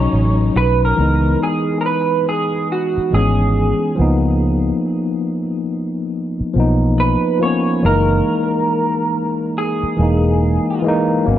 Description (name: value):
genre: hip hop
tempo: 70 BPM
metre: 4/4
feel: swing 63% on 16ths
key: C# dorian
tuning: A4 = 439 Hz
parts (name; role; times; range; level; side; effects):
- electric guitar through a small old amp; melody; 0.0-10.8 s; F#4 to C#5; -20 LUFS; right 3 dB; analog chorus, low-pass filter, analog delay
- bright tine electric piano; accompaniment; 0.0-11.4 s; E3 to D#4; -18 LUFS; left 1 dB; slow stereo tremolo, low-pass filter
- clear studio string section; sustained chords; 0.0-1.0 s; C#3 to D#4; -34 LUFS; equal; low-pass filter
- vintage muted fingered electric bass; bass; 0.0-11.4 s; E1 to C#2; -16 LUFS; equal; none
room: light reverb, digital ambience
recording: dark, warm production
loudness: -15 LUFS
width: side -12 dB against mid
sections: 1.0-11.4 A section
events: none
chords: 0.0 B9; 1.0 C#m7; 4.0 C#13; 7.8 F#13 (rootless)